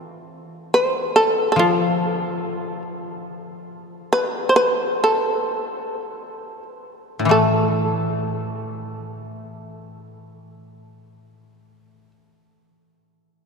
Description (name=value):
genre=japanese traditional, Japanese chamber music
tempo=44-71 BPM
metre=2/4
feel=rubato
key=unclear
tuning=A4 = 440 Hz
part: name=koto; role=accompaniment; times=0.0-4.1, 7.2-12.1 s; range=A2 to A3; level=-23 LUFS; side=left 2 dB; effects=none
part: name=shamisen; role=melody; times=0.7-12.1 s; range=F4 to C5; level=-20 LUFS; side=right 1 dB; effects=none
room=wet cathedral reverb, RT60 5.1 s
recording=in a vast, echoing space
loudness=-18 LUFS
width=side -5 dB against mid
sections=0.0-7.3 A section; 7.3-12.6 B section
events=slowing down 3.3-7.3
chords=none